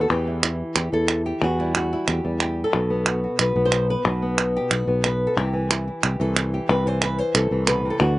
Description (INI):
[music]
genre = flamenco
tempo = 182 BPM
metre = 4/4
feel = straight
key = unclear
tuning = A4 = 441 Hz
[part]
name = flamenco guitar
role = melody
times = 0.0-8.2 s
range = B2 to C5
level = -23 LUFS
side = left 1 dB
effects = none
[part]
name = sustaining fretless electric bass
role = bass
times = 0.0-8.2 s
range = B1 to E2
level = -24 LUFS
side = equal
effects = none
[part]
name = palmas hand claps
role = percussion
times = 0.1-8.2 s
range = none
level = -21 LUFS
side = right 2 dB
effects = none
[sound]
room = light reverb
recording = recorded outdoors, with no room sound, nothing above 10.5 kHz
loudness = -20 LUFS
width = side -17 dB against mid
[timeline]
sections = 0.1-8.2 A section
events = none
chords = 0.1 Em; 2.7 B; 5.4 C